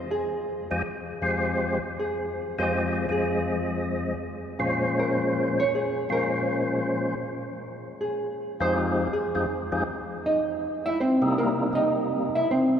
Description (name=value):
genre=jazz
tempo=160 BPM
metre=4/4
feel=swing 66% on 8ths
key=F minor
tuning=A4 = 440 Hz
part: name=hollow-body jazz guitar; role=accompaniment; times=0.0-12.8 s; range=Bb3 to E5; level=-27 LUFS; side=right 1 dB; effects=none
part: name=percussive tonewheel organ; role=melody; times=0.7-12.3 s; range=F2 to Eb5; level=-26 LUFS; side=left 1 dB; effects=slow rotary speaker, overdrive, chorus vibrato
room=wet cathedral reverb, RT60 5.4 s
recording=recorded in a church or concert hall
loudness=-24 LUFS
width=side -8 dB against mid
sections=0.0-12.8 A section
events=hollow-body jazz guitar solo 0.0-12.8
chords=0.0 Fm7; 4.6 Bbm7; 7.6 Fm7; 10.6 C7#9